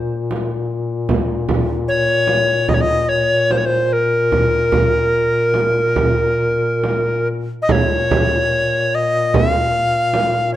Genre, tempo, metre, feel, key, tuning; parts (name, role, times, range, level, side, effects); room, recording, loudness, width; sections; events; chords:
caucasian folk, Caucasian lament; 68-77 BPM; 4/4; rubato; Bb minor; A4 = 440 Hz
mellow duduk; drone; 0.0-10.6 s; Bb2; -22 LUFS; left 3 dB
frame drum; percussion; 0.3-10.3 s; -20 LUFS; right 3 dB
bright reedy tenor recorder; melody; 1.9-10.6 s; Bb4 to F5; -16 LUFS; equal
wet recital hall reverb, RT60 1.3 s; dark, warm production; -14 LUFS; side -13 dB against mid
0.0-7.7 A section; 7.7-10.6 B section